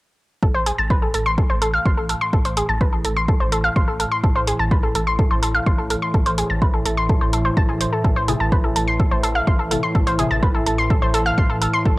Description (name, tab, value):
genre	melodic techno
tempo	126 BPM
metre	4/4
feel	straight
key	A minor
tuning	A4 = 440 Hz
part	analog pluck	arpeggios	0.4-11.9 s	G#4 to C6	-21 LUFS	equal	chorus, cassette tape, sidechain pumping, tape echo
part	round analog bass	bass	0.4-12.0 s	A1	-26 LUFS	equal	sidechain pumping
part	analog drone	drone	0.8-12.0 s	A2 to E3	-26 LUFS	equal	chorus, sidechain pumping, cassette tape
part	electronic kick drum	drums	0.4-12.0 s	none	-19 LUFS	equal	overdrive
part	electronic hi-hat	drums	0.7-11.7 s	none	-27 LUFS	right 2 dB	sidechain pumping on hats
part	filtered dub chord stab	stabs	8.3-12.0 s	C3 to E4	-28 LUFS	left 4 dB	phaser, ensemble chorus, sidechain pumping, cassette tape, tape echo
room	light reverb, digital ambience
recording	home recording on cassette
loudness	-17 LUFS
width	side -20 dB against mid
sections	0.4-12.0 A section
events	none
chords	0.4 Am